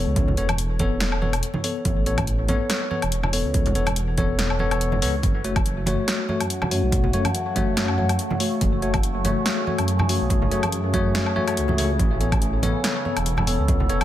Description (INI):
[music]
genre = deep dubstep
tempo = 142 BPM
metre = 4/4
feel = swing 55% on 16ths, half-time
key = F# minor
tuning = A4 = 440 Hz
[part]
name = bell-like tine electric piano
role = stabs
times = 0.0-14.0 s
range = A3 to C#5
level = -26 LUFS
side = left 3 dB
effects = medium stereo tremolo, dub echo
[part]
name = dark detuned saw bass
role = bass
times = 0.0-14.0 s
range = E1 to F#2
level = -24 LUFS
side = equal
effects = none
[part]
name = deep house drum kit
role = drums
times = 0.2-14.0 s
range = hi-hat, snare drum, woodblock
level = -27 LUFS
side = left 1 dB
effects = overdrive
[part]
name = electronic kick drum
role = drums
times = 0.2-13.8 s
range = none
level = -24 LUFS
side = equal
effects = overdrive
[part]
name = congas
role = percussion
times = 0.2-14.0 s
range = none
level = -29 LUFS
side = right 2 dB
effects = dub echo
[part]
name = overtone-sweeping drone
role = sustained chords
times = 6.4-14.0 s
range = C#3 to A4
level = -30 LUFS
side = right 1 dB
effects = chorus, built-in reverb
[sound]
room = light reverb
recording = none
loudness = -20 LUFS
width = side -12 dB against mid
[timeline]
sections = 0.0-14.0 A section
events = none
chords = 0.0 Aadd9; 5.2 F#m; 12.0 Aadd9